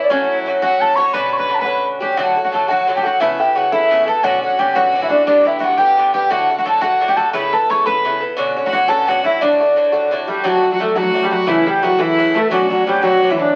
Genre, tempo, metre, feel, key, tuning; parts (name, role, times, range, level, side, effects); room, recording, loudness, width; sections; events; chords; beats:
celtic folk, Celtic jig; 116 BPM (dotted quarters); 6/8; straight; D major; A4 = 440 Hz
baroque flute; melody; 0.0-13.5 s; D4 to C#6; -18 LUFS; equal
bright fiddle; second line; 0.0-13.5 s; G3 to C#5; -26 LUFS; equal
koto; second line; 0.0-13.6 s; D3 to C#5; -27 LUFS; equal
Irish bouzouki; accompaniment; 0.0-13.6 s; G2 to A4; -23 LUFS; equal
wet club reverb, RT60 0.7 s; very old 78 rpm record, vinyl crackle; -16 LUFS; mono
0.0-2.2 A section; 2.2-10.4 B section; 10.4-13.6 B section
0.1 F#m; 1.1 Bmadd9; 2.2 D; 3.2 Aadd9; 4.2 Bmadd9; 5.3 G; 6.3 D; 7.3 Aadd9; 8.4 Bmadd9; 9.4 D; 11.5 Aadd9; 12.5 Bmadd9
| 0.11 0.62 | 1.14 1.66 | 2.17 2.69 | 3.20 3.72 | 4.24 4.75 | 5.27 5.79 | 6.30 6.82 | 7.34 7.86 | 8.37 8.89 | 9.41 9.93 | 10.45 10.96 | 11.48 12.00 | 12.51 13.03 | 13.55